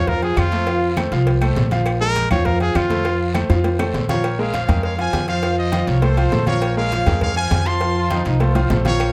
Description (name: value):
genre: latin, salsa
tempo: 202 BPM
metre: 4/4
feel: straight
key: Bb minor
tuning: A4 = 440 Hz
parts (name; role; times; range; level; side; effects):
- clear trumpet; melody; 0.0-3.3 s; F4 to Db5; -24 LUFS; equal; none
- bright grand piano; accompaniment; 0.0-9.1 s; F3 to F5; -24 LUFS; equal; none
- upright bass; bass; 0.0-9.1 s; Bb1 to F2; -22 LUFS; equal; none
- congas; percussion; 0.1-9.1 s; none; -28 LUFS; equal; none
- cowbell and bongos; percussion; 0.1-9.1 s; none; -32 LUFS; equal; none
- guiro; percussion; 0.1-9.1 s; none; -39 LUFS; equal; none
- agogo bells and timbales; percussion; 0.2-9.1 s; none; -32 LUFS; equal; none
- claves; percussion; 0.4-3.9, 9.0-9.1 s; none; -35 LUFS; equal; none
- bright trumpet section; melody; 4.1-9.1 s; A4 to C6; -26 LUFS; equal; none
- bright trombone section; second line; 8.0-8.8 s; Eb4 to F4; -29 LUFS; equal; none
room: light reverb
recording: close, detailed microphones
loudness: -19 LUFS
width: mono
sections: 0.0-4.2 A section; 4.2-9.1 B section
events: trumpet solo 0.0-4.2; drum fill 3.5-4.2, 8.6-9.0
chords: 0.0 Bb5; 0.7 F; 1.9 Bb5; 3.1 F; 4.2 Bbm7; 5.4 F7; 6.6 Bbm7; 7.8 F